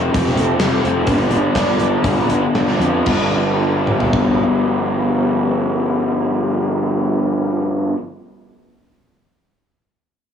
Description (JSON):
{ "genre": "rock, shoegaze and dream pop", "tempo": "113-132 BPM", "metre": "4/4", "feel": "straight", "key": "G mixolydian", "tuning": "A4 = 441 Hz", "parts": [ { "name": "raw garage guitar", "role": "riff", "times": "0.0-8.0 s", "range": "F2 to D4", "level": "-17 LUFS", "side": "left 1 dB", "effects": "overdrive, lush chorus" }, { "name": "fuzz picked electric bass", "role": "bass", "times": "0.0-7.9 s", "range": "F1 to F2", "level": "-19 LUFS", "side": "equal", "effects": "overdrive" }, { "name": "gated 80s drum kit", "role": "drums", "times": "0.1-4.3 s", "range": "crash cymbal, hi-hat, kick drum, snare drum, toms", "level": "-22 LUFS", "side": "equal", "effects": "cassette tape" } ], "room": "light reverb", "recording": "home recording on cassette, small room ambience", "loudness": "-15 LUFS", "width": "side -8 dB against mid", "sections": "0.0-3.1 A section; 3.1-7.3 B section", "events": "slowing down 0.0-3.1", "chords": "0.0 F; 1.1 G7", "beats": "0.14 0.60 | 1.07 1.55 2.04 2.54 | 3.07 3.60 4.13 4.66 | 5.19 5.72 6.25 6.79" }